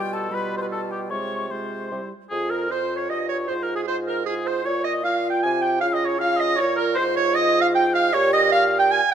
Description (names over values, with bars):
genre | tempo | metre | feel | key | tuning
quick classical-period movement for wind quintet | 154 BPM | 3/4 | straight | F minor | A4 = 440 Hz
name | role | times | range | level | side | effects
mellow silver concert flute | melody | 0.0-9.1 s | Ab4 to Db6 | -31 LUFS | left 6 dB | none
warm oboe | second line | 0.0-9.1 s | G4 to Ab5 | -26 LUFS | left 3 dB | none
mellow French horn | accompaniment | 0.0-9.0 s | G3 to G4 | -26 LUFS | right 1 dB | none
warm clarinet | accompaniment | 0.0-9.1 s | E4 to Ab5 | -23 LUFS | right 6 dB | none
warm bassoon | bass | 0.0-9.0 s | F2 to Db3 | -30 LUFS | right 2 dB | none
room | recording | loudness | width
light reverb | close, detailed microphones | -20 LUFS | side -8 dB against mid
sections
0.0-2.3 A section; 2.3-9.1 B section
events
none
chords
0.0 G7/B; 1.1 Fm/C; 1.9 C; 2.3 Fm11; 3.5 Fm/Ab; 4.7 Bb5; 5.8 Bbm/Db; 7.0 Fm/Ab; 8.1 Bbm6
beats
0.32 0.71 | 1.11 1.52 1.92 | 2.32 2.71 3.10 | 3.50 3.88 4.27 | 4.66 5.05 5.44 | 5.83 6.21 6.59 | 6.98 7.36 7.75 | 8.14 8.53 8.92